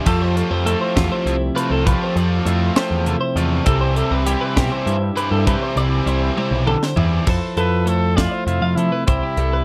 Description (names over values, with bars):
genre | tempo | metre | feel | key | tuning
math rock and midwest emo | 67 BPM (dotted quarters) | 6/8 | straight | unclear | A4 = 444 Hz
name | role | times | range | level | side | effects
twelve-string electric guitar | accompaniment | 0.0-9.6 s | G2 to C5 | -26 LUFS | equal | none
twelve-string electric guitar | arpeggios | 0.0-9.6 s | F4 to F5 | -27 LUFS | equal | none
biting overdriven guitar | riff | 0.0-7.3 s | E3 to F4 | -27 LUFS | equal | none
growling picked electric bass | bass | 0.1-9.6 s | B1 to F3 | -22 LUFS | equal | overdrive
crisp fusion drum kit | drums | 0.1-9.5 s | crash cymbal, hi-hat, kick drum, snare drum, toms | -24 LUFS | equal | none
bright trumpet | melody | 7.6-9.6 s | E4 to B4 | -26 LUFS | equal | slapback echo
room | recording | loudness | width
small room ambience | dry, close 1970s-style studio recording | -19 LUFS | mono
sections
0.0-7.3 A section; 7.3-9.6 B section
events
drum fill 6.4-7.3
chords
0.1 Fmaj9; 3.7 Cmaj7; 7.3 Fmaj7; 9.1 Cmaj7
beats
| 0.06 0.96 | 1.86 2.76 | 3.66 4.57 | 5.47 6.37 | 7.27 8.17 | 9.08